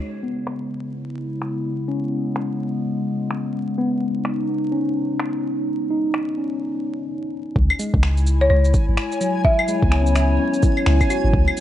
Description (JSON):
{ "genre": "future garage", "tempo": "127 BPM", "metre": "4/4", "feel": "swing 61% on 16ths", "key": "C# minor", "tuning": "A4 = 440 Hz", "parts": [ { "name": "tine electric piano", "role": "accompaniment", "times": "0.0-11.6 s", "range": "F#3 to F#4", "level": "-25 LUFS", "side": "left 2 dB", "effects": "medium stereo tremolo, sidechain pumping, analog delay" }, { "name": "warbly tape-like pad", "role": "sustained chords", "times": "0.0-11.6 s", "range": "C#3 to C#5", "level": "-26 LUFS", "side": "equal", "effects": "chorus, built-in reverb, sidechain pumping" }, { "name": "electronic finger snaps, claves and shaker", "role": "drums", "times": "0.5-11.6 s", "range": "none", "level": "-25 LUFS", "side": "left 2 dB", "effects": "overdrive, low-pass filter on perc, low-pass filter on snare" }, { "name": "soft 808-style bass", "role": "bass", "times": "7.6-11.5 s", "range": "G#1 to C#2", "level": "-18 LUFS", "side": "equal", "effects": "sidechain pumping" }, { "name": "electronic kick drum", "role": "drums", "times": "7.6-11.4 s", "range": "none", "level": "-18 LUFS", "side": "equal", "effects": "overdrive" }, { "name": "backwards swelling texture", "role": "texture", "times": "8.2-11.6 s", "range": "G#5", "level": "-30 LUFS", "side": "right 1 dB", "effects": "built-in reverb" }, { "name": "folk marimba with hard mallets", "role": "melody", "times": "8.4-10.1 s", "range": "C#5 to E5", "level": "-23 LUFS", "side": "equal", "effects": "analog delay" } ], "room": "light reverb", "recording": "vinyl crackle, nothing above 10.5 kHz", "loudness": "-18 LUFS", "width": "side -12 dB against mid", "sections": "0.0-7.6 A section; 7.6-11.6 B section", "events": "filter sweep on ambient pad 0.0-7.6; stop 7.1-7.6", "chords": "0.0 C#m9; 7.6 C#m7" }